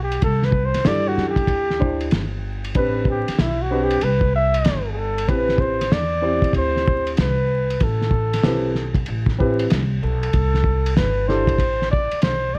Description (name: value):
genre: hip hop, jazz-hop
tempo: 95 BPM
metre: 4/4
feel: swing 65% on 16ths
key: A dorian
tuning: A4 = 444 Hz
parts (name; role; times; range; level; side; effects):
- mellow flugelhorn; melody; 0.0-12.6 s; E4 to E5; -25 LUFS; equal; plate reverb
- upright bass; bass; 0.0-12.6 s; G1 to G2; -26 LUFS; equal; none
- cloth-damped thuddy drum kit; drums; 0.1-12.4 s; hi-hat, kick drum, ride cymbal, snare drum; -25 LUFS; equal; vintage 12-bit sampler grit
- dark grand piano; accompaniment; 0.8-11.5 s; C4 to C5; -26 LUFS; equal; plate reverb
room: moderate small room reverb, RT60 0.5 s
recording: dark, warm production, vinyl crackle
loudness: -20 LUFS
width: mono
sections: 0.0-5.3 A section; 5.3-12.6 B section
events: flugelhorn solo 0.0-5.3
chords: 0.2 C69; 2.8 Am11; 5.3 Am9; 10.3 C5